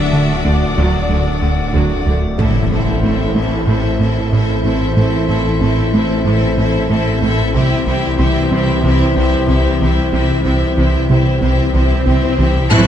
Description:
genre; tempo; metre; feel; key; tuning
cinematic, hybrid orchestral and electronic film score; 93 BPM; 4/4; straight; A dorian; A4 = 439 Hz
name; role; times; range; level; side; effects
rich studio violin section; melody; 0.0-1.7, 12.7-12.9 s; D5 to F#6; -26 LUFS; left 2 dB; none
rich chamber violin section; second line; 0.0-12.9 s; F#4 to E5; -23 LUFS; left 4 dB; none
rich symphonic viola section; accompaniment; 0.0-12.9 s; D3 to E4; -25 LUFS; right 1 dB; none
metallic inharmonic drone; sustained chords; 0.0-12.9 s; D3 to D5; -21 LUFS; equal; chorus, built-in reverb
snarling distorted saw bass; bass; 0.0-12.9 s; D1 to C2; -20 LUFS; equal; distortion
tight sequenced synth; arpeggios; 0.1-12.9 s; C3 to A4; -25 LUFS; equal; none
rubbery square bass; riff; 0.1-12.9 s; C2 to A3; -18 LUFS; right 1 dB; none
rich symphonic cello section; bass; 0.1-12.9 s; D2 to F#3; -22 LUFS; right 2 dB; none
dark French horn section; sustained chords; 2.4-12.9 s; C3 to E4; -22 LUFS; left 2 dB; none
impact and swell; sound effects; 2.4-5.0, 11.4-12.9 s; none; -22 LUFS; left 1 dB; none
brilliant trombone section; sustained chords; 12.7-12.9 s; E3 to A3; -21 LUFS; right 6 dB; none
rich symphonic double bass section; bass; 12.7-12.9 s; A1; -19 LUFS; right 4 dB; none
room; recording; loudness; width
wet scoring stage reverb, RT60 1.5 s; nothing above 10.3 kHz; -12 LUFS; side -10 dB against mid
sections
0.0-2.4 A section; 2.4-12.7 B section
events
impact 2.4-5.0, 12.7; swell 11.4-12.7; band accent 12.7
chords
0.0 D; 2.4 Am; 7.6 C

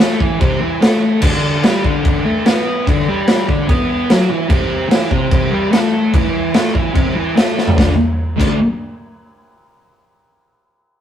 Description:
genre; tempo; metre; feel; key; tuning
garage rock duo or trio; 147 BPM; 4/4; straight; D mixolydian; A4 = 440 Hz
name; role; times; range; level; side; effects
thick fuzz guitar; riff; 0.0-8.6 s; C3 to B4; -16 LUFS; equal; distortion
raw garage drum kit; drums; 0.0-8.5 s; crash cymbal, kick drum, snare drum, toms; -15 LUFS; equal; none
room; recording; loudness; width
moderate stone room reverb, RT60 1.4 s; rough rehearsal-room recording; -12 LUFS; side -10 dB against mid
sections
0.0-1.2 A section; 1.2-7.8 A section; 7.8-9.4 B section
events
drum fill 7.6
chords
0.0 C5; 1.2 D5; 4.5 C5; 7.8 D5

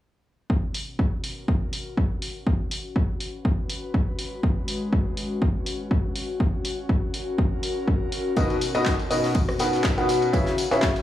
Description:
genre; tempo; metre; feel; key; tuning
piano house; 122 BPM; 4/4; swing 55% on 16ths; unclear; A4 = 441 Hz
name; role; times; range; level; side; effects
electronic kick drum; drums; 0.5-10.9 s; none; -24 LUFS; equal; overdrive
airy breathy pad; texture; 0.5-11.0 s; B2 to B4; -31 LUFS; left 2 dB; chorus, sidechain pumping
punchy analog drum machine; drums; 0.7-11.0 s; handclaps, hi-hat, rim click; -32 LUFS; equal; none
clear upright piano; riff; 8.4-10.9 s; B2 to F#5; -23 LUFS; left 1 dB; sidechain pumping, tape echo
gated 80s drum kit; drums; 8.4-11.0 s; hi-hat, ride cymbal, snare drum; -38 LUFS; equal; sidechain pumping on cymbals, high-pass filter on cymbals, sidechain pumping on hats, high-pass filter on hats, high-pass filter on snare, high-pass filter on room
tambourine; percussion; 8.4-11.0 s; none; -37 LUFS; left 4 dB; none
room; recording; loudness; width
light reverb, studio ambience; transformer saturation, small room ambience; -22 LUFS; side -13 dB against mid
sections
0.5-11.0 A section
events
fade-in on analog synth pad 0.5-11.0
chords
0.5 B5; 2.5 C#7sus4; 4.2 G#m7; 6.2 F#; 8.4 Bmaj7; 10.3 C#m7

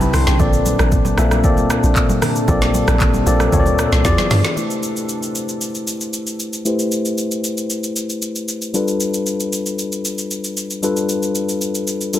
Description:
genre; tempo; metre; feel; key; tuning
amapiano; 115 BPM; 4/4; straight; unclear; A4 = 440 Hz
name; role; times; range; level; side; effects
tine electric piano; accompaniment; 0.0-12.2 s; Bb2 to C6; -19 LUFS; left 2 dB; low-pass filter
deep dark ambient pad; sustained chords; 0.0-4.6 s; C3 to B4; -26 LUFS; equal; chorus, built-in reverb, sidechain pumping
hollow log drum bass; bass; 0.0-4.4 s; A1 to G2; -18 LUFS; equal; none
deep house drum kit; drums; 0.0-12.2 s; handclaps, hi-hat, kick drum, rim click, shaker, snare drum; -20 LUFS; equal; none
congas; percussion; 0.0-4.4 s; none; -25 LUFS; right 4 dB; none
room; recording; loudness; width
digital ambience; dense, heavily limited modern master; -16 LUFS; side -12 dB against mid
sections
0.0-4.6 A section; 4.6-12.2 B section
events
drop 0.0-4.6; tine electric piano fill 0.0-0.4; drum fill 4.0-4.6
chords
0.4 Bbmaj9; 4.0 E7b9; 4.6 Am7; 8.7 G9

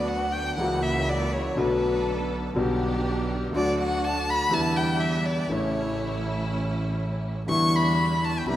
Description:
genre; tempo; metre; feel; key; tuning
tango; 122 BPM; 4/4; rubato; unclear; A4 = 437 Hz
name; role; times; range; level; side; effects
warm violin; second line; 0.0-8.6 s; B4 to C#6; -27 LUFS; left 1 dB; none
warm concert grand piano; accompaniment; 0.0-8.6 s; A1 to A4; -27 LUFS; left 2 dB; none
rich studio string section; stabs; 0.0-8.6 s; G3 to A4; -33 LUFS; right 2 dB; none
warm double bass; bass; 0.0-8.6 s; A1 to E2; -30 LUFS; right 2 dB; none
room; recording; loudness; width
wet lush hall reverb, RT60 2.8 s; rough home demo mix; -23 LUFS; side -13 dB against mid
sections
0.0-8.6 A section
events
violin solo 0.0-8.6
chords
0.0 D6; 0.6 F#7/C#; 1.6 Bm7; 2.6 G/B; 3.5 D; 4.5 Em7; 5.5 A; 7.5 Em7

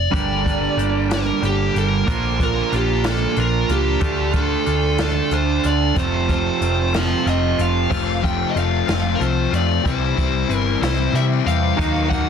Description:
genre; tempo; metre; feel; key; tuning
quiet-loud alternative rock; 62 BPM (dotted quarters); 6/8; straight; unclear; A4 = 439 Hz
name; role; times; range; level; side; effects
biting lead guitar; melody; 0.0-12.3 s; G4 to G5; -23 LUFS; equal; overdrive
hollow-body short-scale picked electric bass; bass; 0.0-12.3 s; F1 to C3; -22 LUFS; equal; none
twangy electric guitar; arpeggios; 0.1-12.3 s; F2 to G4; -27 LUFS; left 5 dB; lush chorus
fuzz guitar; riff; 0.1-7.9, 11.8-12.3 s; F2 to Eb4; -22 LUFS; right 13 dB; distortion
jazz brush drum kit; drums; 0.1-12.3 s; crash cymbal, hi-hat, kick drum, snare drum; -25 LUFS; equal; none
crunchy overdriven guitar; riff; 7.9-12.3 s; C3 to F4; -23 LUFS; left 17 dB; none
room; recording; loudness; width
studio reverb; dense, heavily limited modern master; -17 LUFS; side -7 dB against mid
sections
0.0-7.9 A section; 7.9-12.3 B section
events
none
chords
0.1 Gm; 2.1 Bb; 4.0 Dm; 6.0 F; 9.8 C; 11.8 Ebm

